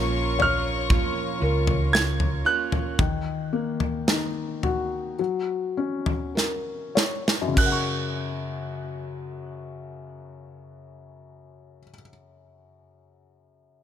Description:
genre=pop ballad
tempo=48-60 BPM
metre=4/4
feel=straight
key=F# major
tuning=A4 = 440 Hz
part: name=felt-muted upright piano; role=accompaniment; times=0.0-13.8 s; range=F#2 to C#6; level=-29 LUFS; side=left 4 dB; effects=none
part: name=warm studio string section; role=sustained chords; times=0.0-2.9 s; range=E#4 to C#6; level=-30 LUFS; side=left 4 dB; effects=none
part: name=fingerpicked plugged-in steel-string acoustic guitar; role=arpeggios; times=0.0-3.0 s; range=A#2 to E#4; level=-32 LUFS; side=right 12 dB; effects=none
part: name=hollow-body short-scale fingered electric bass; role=bass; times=0.0-2.4 s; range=A#1 to C#2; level=-26 LUFS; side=equal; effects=none
part: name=warm grand piano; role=melody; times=0.4-11.9 s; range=E#6 to G#6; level=-26 LUFS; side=right 3 dB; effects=none
part: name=modern studio drum kit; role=drums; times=0.4-7.9 s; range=crash cymbal, kick drum, snare drum, toms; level=-24 LUFS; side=equal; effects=none
room=small room ambience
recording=none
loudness=-22 LUFS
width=side -10 dB against mid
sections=0.0-7.6 A section; 7.6-12.5 B section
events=slowing down 0.0-7.6; drum fill 6.4-7.6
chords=0.0 A#m; 3.0 D#m; 5.2 F#

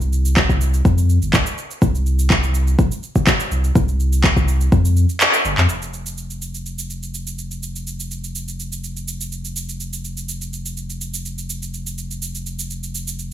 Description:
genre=afro house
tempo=124 BPM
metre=4/4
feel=straight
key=unclear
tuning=A4 = 441 Hz
part: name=warm sub bass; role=bass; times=0.0-13.3 s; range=F1 to F2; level=-20 LUFS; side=equal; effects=sidechain pumping
part: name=electronic cabasa and handclaps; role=drums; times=0.0-13.3 s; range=none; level=-22 LUFS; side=right 1 dB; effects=none
part: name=electronic kick drum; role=drums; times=0.4-4.8 s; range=none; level=-17 LUFS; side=equal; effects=none
room=light reverb, digital ambience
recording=studio reverb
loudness=-17 LUFS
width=side -11 dB against mid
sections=0.0-5.7 A section; 5.7-13.3 B section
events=kick drops out 5.2-5.7; band accent 5.2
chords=none

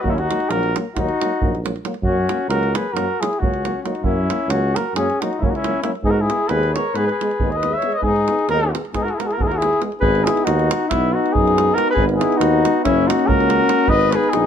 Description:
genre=balkan folk, Balkan brass band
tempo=271 BPM (eighths)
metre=9/8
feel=straight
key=G# minor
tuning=A4 = 440 Hz
part: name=mellow flugelhorn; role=melody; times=0.0-14.5 s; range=E4 to E5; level=-20 LUFS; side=left 1 dB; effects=plate reverb
part: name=warm flugelhorn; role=second line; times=0.0-14.5 s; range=B3 to C#5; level=-24 LUFS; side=left 4 dB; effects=none
part: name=mellow trombone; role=accompaniment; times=0.0-14.5 s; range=F#3 to B3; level=-27 LUFS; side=right 7 dB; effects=none
part: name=warm tuba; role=bass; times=0.0-14.5 s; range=F#1 to G#2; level=-23 LUFS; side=equal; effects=none
part: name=warm euphonium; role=accompaniment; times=0.1-14.5 s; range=A#3 to D#4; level=-26 LUFS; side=left 8 dB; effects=none
part: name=davul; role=percussion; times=0.1-14.5 s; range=none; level=-24 LUFS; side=right 3 dB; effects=none
room=light reverb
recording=faint mains hum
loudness=-16 LUFS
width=side -8 dB against mid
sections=0.0-10.0 A section; 10.0-14.5 B section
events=speeding up 0.0-14.5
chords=0.1 D#m; 2.0 F#; 6.0 G#m; 10.9 B; 12.0 G#m; 12.8 F#; 13.9 G#m

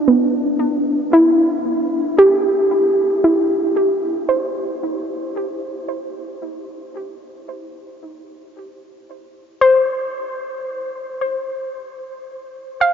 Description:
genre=ambient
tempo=56 BPM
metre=3/4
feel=straight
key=C major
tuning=A4 = 440 Hz
part: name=soft round pluck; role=solo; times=0.0-12.9 s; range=B3 to F5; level=-16 LUFS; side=equal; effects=chorus, tape echo
room=wet huge ambient reverb, RT60 8.9 s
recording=nothing above 7.5 kHz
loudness=-16 LUFS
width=side -7 dB against mid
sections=0.0-12.9 A section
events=none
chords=0.0 C; 9.6 N.C.

